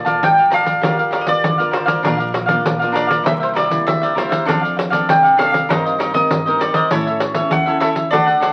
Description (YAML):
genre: samba and choro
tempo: 99 BPM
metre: 4/4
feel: straight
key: G minor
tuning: A4 = 444 Hz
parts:
  - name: mandolin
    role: melody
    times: 0.0-8.5 s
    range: Bb4 to G5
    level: -20 LUFS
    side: equal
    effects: none
  - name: cavaquinho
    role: accompaniment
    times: 0.0-8.5 s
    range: D4 to A5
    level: -21 LUFS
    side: equal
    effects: none
  - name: nylon-string guitar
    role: accompaniment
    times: 0.0-8.5 s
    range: G2 to D5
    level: -27 LUFS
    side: equal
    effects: none
  - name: upright bass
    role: bass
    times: 0.1-8.5 s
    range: G1 to Bb2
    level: -34 LUFS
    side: equal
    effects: none
  - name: pandeiro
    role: percussion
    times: 0.1-8.5 s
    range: none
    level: -23 LUFS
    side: equal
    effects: none
room: wet small room reverb, RT60 0.5 s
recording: very old 78 rpm record, vinyl crackle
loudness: -16 LUFS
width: mono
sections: 0.8-8.5 A section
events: none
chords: 0.0 Bbmaj7; 0.8 Gm7; 2.0 Bb; 3.3 C7; 4.5 F6; 5.7 Cm7/G; 6.9 A